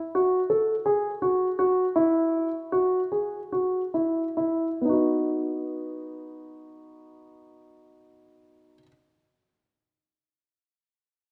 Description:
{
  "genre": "contemporary instrumental, contemporary",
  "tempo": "134-171 BPM (eighths)",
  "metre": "7/8",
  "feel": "straight",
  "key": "B major",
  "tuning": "A4 = 439 Hz",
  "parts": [
    { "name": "dark concert grand piano", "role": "arpeggios", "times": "0.1-8.9 s", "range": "B3 to B4", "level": "-26 LUFS", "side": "equal", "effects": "none" }
  ],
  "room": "moderate scoring stage reverb, RT60 2.1 s",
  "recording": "none",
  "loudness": "-25 LUFS",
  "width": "mono",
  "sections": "0.0-4.8 A section; 4.8-7.9 B section",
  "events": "slowing down 0.0-4.8",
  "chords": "0.0 Eadd9; 4.8 B"
}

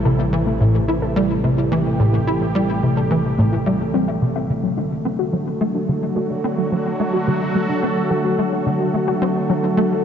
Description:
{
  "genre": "ambient, sequencer-driven space music",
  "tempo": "108 BPM",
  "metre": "4/4",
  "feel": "straight",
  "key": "unclear",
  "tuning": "A4 = 442 Hz",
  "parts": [
    { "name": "sweeping resonant pad", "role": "sustained chords", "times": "0.0-10.0 s", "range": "C3 to A4", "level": "-21 LUFS", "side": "right 1 dB", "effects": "chorus" },
    { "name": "warbly dusty pluck", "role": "arpeggios", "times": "0.0-9.9 s", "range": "F#3 to E5", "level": "-25 LUFS", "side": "moving between left 6 dB and right 2 dB", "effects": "chorus, auto-pan, ping-pong delay" },
    { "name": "tight sequencer bass", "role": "riff", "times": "0.0-9.9 s", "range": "A2 to E4", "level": "-20 LUFS", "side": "equal", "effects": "ensemble chorus, ping-pong delay" },
    { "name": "analog drone", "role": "bass", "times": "0.0-4.5 s", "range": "A1", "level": "-29 LUFS", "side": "equal", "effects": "chorus" }
  ],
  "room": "wet cathedral reverb, RT60 5.2 s",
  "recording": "in a vast, echoing space, nothing above 7.8 kHz",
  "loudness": "-17 LUFS",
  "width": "side -8 dB against mid",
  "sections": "0.0-4.5 A section; 4.5-10.0 B section",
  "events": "none",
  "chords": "0.0 Am; 4.5 D"
}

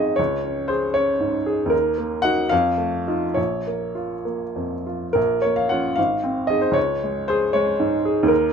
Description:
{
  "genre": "classical, romantic character piece for solo piano",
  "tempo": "64-80 BPM (dotted quarters)",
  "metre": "6/8",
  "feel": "rubato",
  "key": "Bb minor",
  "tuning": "A4 = 440 Hz",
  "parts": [
    { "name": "warm upright piano", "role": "solo", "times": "0.0-8.5 s", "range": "Ab1 to Gb5", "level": "-19 LUFS", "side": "equal", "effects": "none" }
  ],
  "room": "moderate studio reverb, RT60 0.6 s",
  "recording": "minimal, uncompressed stereo recording",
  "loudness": "-19 LUFS",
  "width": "side -6 dB against mid",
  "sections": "0.0-5.2 A section; 5.2-8.5 A section",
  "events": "none",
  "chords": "0.2 Db5; 1.7 Ebm; 2.5 F7; 3.4 Bbm; 6.0 Ab; 6.8 Db5"
}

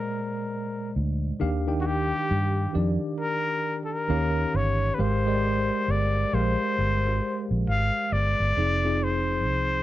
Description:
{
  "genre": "R&B, neo-soul",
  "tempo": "67 BPM",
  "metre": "4/4",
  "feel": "swing 62% on 16ths",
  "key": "unclear",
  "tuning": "A4 = 441 Hz",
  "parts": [
    { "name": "trumpet with straight mute", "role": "melody", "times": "0.0-9.8 s", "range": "Gb4 to F5", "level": "-27 LUFS", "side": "left 2 dB", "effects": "none" },
    { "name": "tine electric piano", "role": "accompaniment", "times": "0.0-9.8 s", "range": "Bb2 to G5", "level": "-29 LUFS", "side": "equal", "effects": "medium stereo tremolo" },
    { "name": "vintage muted fingered electric bass", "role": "bass", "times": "1.0-9.8 s", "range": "F1 to G2", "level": "-26 LUFS", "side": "equal", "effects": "none" }
  ],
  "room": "little or no reverb",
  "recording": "dry, close 1970s-style studio recording",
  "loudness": "-23 LUFS",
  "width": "side -14 dB against mid",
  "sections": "0.0-9.8 A section",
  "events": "none",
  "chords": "0.0 Bb9sus4; 1.4 Ebmaj9; 4.1 Eb9; 5.0 Abmaj13; 8.6 Fm7"
}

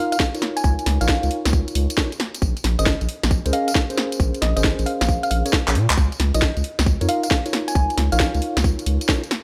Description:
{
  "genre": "UK garage, two-step garage",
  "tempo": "135 BPM",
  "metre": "4/4",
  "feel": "swing 66% on 16ths",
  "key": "unclear",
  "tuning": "A4 = 440 Hz",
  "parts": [
    { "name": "thumb-piano-like synth pluck", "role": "melody", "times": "0.0-8.6 s", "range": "Eb5 to Ab5", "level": "-29 LUFS", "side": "equal", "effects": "chorus, phaser, tape echo" },
    { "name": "mellow tine electric piano", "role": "stabs", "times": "0.0-9.2 s", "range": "Db4 to F5", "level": "-30 LUFS", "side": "equal", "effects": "low-pass filter" },
    { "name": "garage drum kit", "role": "drums", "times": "0.1-9.4 s", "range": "handclaps, hi-hat, snare drum, tambourine", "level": "-26 LUFS", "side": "equal", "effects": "overdrive, studio reverb" },
    { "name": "electronic kick drum", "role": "drums", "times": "0.2-9.2 s", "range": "none", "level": "-23 LUFS", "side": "equal", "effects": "overdrive, studio reverb" },
    { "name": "saturated sub bass", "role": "bass", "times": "0.6-9.0 s", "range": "Ab1 to Bb2", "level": "-23 LUFS", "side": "equal", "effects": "sidechain pumping" }
  ],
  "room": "digital ambience",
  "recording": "none",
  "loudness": "-20 LUFS",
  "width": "mono",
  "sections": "0.0-9.4 A section",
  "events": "drum fill 5.6-6.0",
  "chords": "0.0 Db69; 2.2 Bbm9; 6.0 Db69"
}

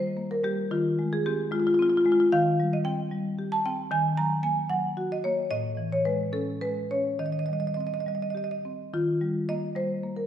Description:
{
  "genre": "classical, contemporary piece for solo marimba",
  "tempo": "68-76 BPM (dotted quarters)",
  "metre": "6/8",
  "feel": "rubato",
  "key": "unclear",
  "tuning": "A4 = 440 Hz",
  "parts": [
    { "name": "marimba with medium hard mallets", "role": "solo", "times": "0.0-10.3 s", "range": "A2 to Bb5", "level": "-24 LUFS", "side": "equal", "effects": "none" }
  ],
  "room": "wet recital hall reverb, RT60 1.6 s",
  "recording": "recorded in a church or concert hall",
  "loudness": "-24 LUFS",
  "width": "side -10 dB against mid",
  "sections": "0.0-8.9 A section; 8.9-10.3 A section",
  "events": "none",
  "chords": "0.0 Eb; 0.7 Fm9/Eb; 2.3 Eb6; 3.9 Gb/Eb; 5.5 Amaj7; 7.2 Eb6; 8.9 Ebadd9"
}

